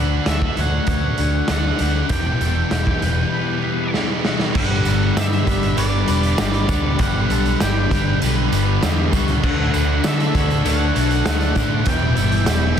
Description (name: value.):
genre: rock, shoegaze and dream pop.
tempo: 98 BPM.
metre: 4/4.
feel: straight.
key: G major.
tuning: A4 = 440 Hz.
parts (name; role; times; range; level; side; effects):
twangy electric guitar; arpeggios; 0.0-12.8 s; F#4 to F#5; -31 LUFS; left 10 dB; wide subtle chorus, analog delay.
biting overdriven guitar; riff; 0.0-12.8 s; E2 to G4; -26 LUFS; right 12 dB; reverse reverb.
thick fuzz guitar; riff; 0.0-12.8 s; E2 to D4; -25 LUFS; left 12 dB; distortion, ensemble chorus.
overdriven picked electric bass; bass; 0.0-12.7 s; E1 to D3; -21 LUFS; equal; none.
octave-fuzz lead guitar; melody; 0.3-12.8 s; D5 to G5; -27 LUFS; right 1 dB; distortion, analog delay.
raw garage drum kit; drums; 0.3-12.8 s; crash cymbal, hi-hat, kick drum, snare drum; -22 LUFS; equal; none.
chorused pulse-width pad; sustained chords; 4.5-12.8 s; G3 to E6; -31 LUFS; right 1 dB; none.
cranked stack guitar; riff; 4.5-12.8 s; E2 to D4; -26 LUFS; equal; overdrive.
tambourine; percussion; 4.9-12.6 s; none; -37 LUFS; right 8 dB; none.
room: studio reverb.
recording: dense, heavily limited modern master.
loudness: -16 LUFS.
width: side -8 dB against mid.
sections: 0.0-4.6 A section; 4.6-12.8 B section.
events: drum fill 3.9-4.6.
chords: 0.0 Dmaj7; 2.1 Emadd9; 4.6 Gmaj7; 9.4 Dmaj7; 11.9 Em.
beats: 0.27 0.88 1.50 | 2.11 2.72 3.33 3.94 | 4.55 5.17 5.78 6.39 | 7.00 7.61 8.22 8.83 | 9.44 10.05 10.66 11.27 | 11.88 12.49.